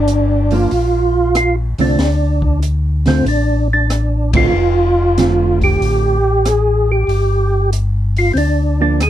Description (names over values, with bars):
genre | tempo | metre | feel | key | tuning
soul jazz organ trio | 94 BPM | 4/4 | swing 68% on 8ths | D minor | A4 = 441 Hz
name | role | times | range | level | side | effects
percussive tonewheel organ | melody | 0.0-9.1 s | C4 to G#4 | -16 LUFS | right 1 dB | slow rotary speaker, chorus vibrato
mellow tonewheel organ | bass | 0.0-9.1 s | F1 to D2 | -16 LUFS | left 1 dB | slow rotary speaker
open jazz drum kit | drums | 0.1-9.1 s | hi-hat, kick drum, ride cymbal, rim click, snare drum | -23 LUFS | left 1 dB | none
hollow-body jazz guitar | accompaniment | 0.5-9.0 s | D3 to F4 | -19 LUFS | right 5 dB | none
room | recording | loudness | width
little or no reverb | dark, warm production | -12 LUFS | side -12 dB against mid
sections
0.0-9.1 A section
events
band accent 4.2-4.5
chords
0.0 Gm7; 2.0 Dm7; 7.1 G5